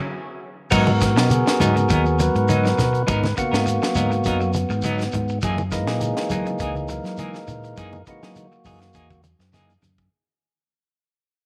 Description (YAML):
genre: afrobeat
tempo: 102 BPM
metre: 4/4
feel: swing 53% on 16ths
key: G# minor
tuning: A4 = 440 Hz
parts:
  - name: percussive tonewheel organ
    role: accompaniment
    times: 0.7-9.2 s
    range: E3 to B4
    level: -26 LUFS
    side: equal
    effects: overdrive, stopped rotary speaker
  - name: clean electric guitar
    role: arpeggios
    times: 0.7-10.1 s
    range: B2 to G#3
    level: -34 LUFS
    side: equal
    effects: none
  - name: clean electric guitar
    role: stabs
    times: 0.7-10.0 s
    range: E3 to A#4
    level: -30 LUFS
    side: equal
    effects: harmonic tremolo
  - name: fingered electric bass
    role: bass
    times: 0.7-10.1 s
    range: C#2 to F#3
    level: -25 LUFS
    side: equal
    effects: none
  - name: tight funk drum kit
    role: drums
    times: 0.7-10.1 s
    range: crash cymbal, hi-hat, kick drum, snare drum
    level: -29 LUFS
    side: equal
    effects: none
  - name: shekere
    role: percussion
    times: 0.7-10.1 s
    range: none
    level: -34 LUFS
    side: equal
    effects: none
  - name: congas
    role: percussion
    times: 0.9-10.0 s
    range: none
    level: -31 LUFS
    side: equal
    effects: none
room: moderate plate reverb, RT60 2.0 s, studio reverb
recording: none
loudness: -21 LUFS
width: mono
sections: 0.7-10.1 A section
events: band accent 0.0-0.7; fade-out 0.7-10.1; tonewheel organ solo 0.7-10.1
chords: 0.0 N.C.; 0.7 G#m9; 5.4 F#13